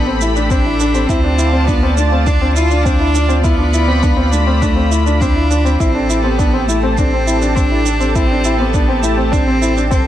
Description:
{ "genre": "piano and strings electronica", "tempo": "102 BPM", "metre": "4/4", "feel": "straight", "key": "A minor", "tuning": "A4 = 440 Hz", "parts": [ { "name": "warm cello", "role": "melody", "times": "0.0-10.1 s", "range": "A3 to F4", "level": "-18 LUFS", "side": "equal", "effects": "none" }, { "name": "lush unison pad", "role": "sustained chords", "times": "0.0-10.1 s", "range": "F4 to B5", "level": "-21 LUFS", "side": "right 1 dB", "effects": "chorus, sidechain pumping" }, { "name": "warm sub bass", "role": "bass", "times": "0.0-10.1 s", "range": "A1 to D2", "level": "-17 LUFS", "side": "equal", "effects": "sidechain pumping" }, { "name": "warm concert grand piano", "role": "riff", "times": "0.1-10.0 s", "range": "C4 to E4", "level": "-19 LUFS", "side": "left 1 dB", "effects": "none" }, { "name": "shaker", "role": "drums", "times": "0.2-10.0 s", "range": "none", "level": "-27 LUFS", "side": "right 9 dB", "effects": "none" }, { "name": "electronic kick drum", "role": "drums", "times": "0.5-10.0 s", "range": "none", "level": "-16 LUFS", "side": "equal", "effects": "none" } ], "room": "little or no reverb", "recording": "none", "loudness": "-12 LUFS", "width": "side -12 dB against mid", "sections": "0.0-10.1 A section", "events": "none", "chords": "0.0 Am7; 1.1 Dm; 5.8 Am7" }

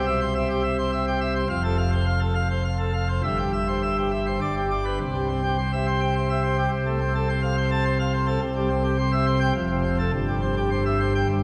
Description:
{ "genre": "classical, organ toccata", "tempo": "105 BPM", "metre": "3/4", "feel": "straight", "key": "C major", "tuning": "A4 = 443 Hz", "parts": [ { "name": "pipe organ, plenum", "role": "solo", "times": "0.0-11.4 s", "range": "F1 to A5", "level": "-24 LUFS", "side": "equal", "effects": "none" } ], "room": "wet church reverb, RT60 3.3 s", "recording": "recorded in a church or concert hall", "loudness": "-24 LUFS", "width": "mono", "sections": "0.0-5.0 A section; 5.0-11.4 B section", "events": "none", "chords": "0.0 C; 1.5 F; 3.2 C/G; 4.4 G; 5.0 C; 6.7 F/C; 8.4 C; 9.6 F; 10.1 C/G" }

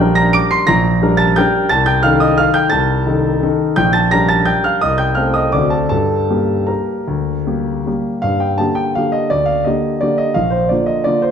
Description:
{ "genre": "classical, piano waltz", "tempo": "149-184 BPM", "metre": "3/4", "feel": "rubato", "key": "G minor", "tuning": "A4 = 439 Hz", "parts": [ { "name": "warm concert grand piano", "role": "solo", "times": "0.0-11.3 s", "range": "Bb1 to D7", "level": "-13 LUFS", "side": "equal", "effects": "none" } ], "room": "wet recital hall reverb, RT60 1.6 s", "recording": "dark, warm production", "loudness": "-13 LUFS", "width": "side -7 dB against mid", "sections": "0.0-8.2 A section; 8.2-11.3 A section", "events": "none", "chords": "0.0 Gm/Bb; 1.7 Adim/C; 3.8 Gm/Bb; 4.8 Adim/C; 5.5 D7; 5.9 Gm; 10.4 Bb" }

